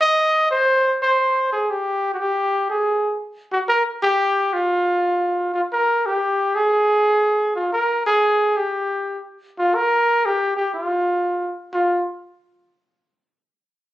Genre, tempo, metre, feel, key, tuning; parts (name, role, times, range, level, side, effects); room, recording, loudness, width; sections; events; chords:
jazz; 119 BPM; 4/4; swing 66% on 8ths; F minor; A4 = 442 Hz
breathy trumpet; solo; 0.0-12.0 s; F4 to Eb5; -17 LUFS; equal
light reverb; recorded on a phone in the room, club reverb, compression; -17 LUFS; side -14 dB against mid
0.0-3.7 A section; 3.7-11.7 B section; 11.7-13.8 C section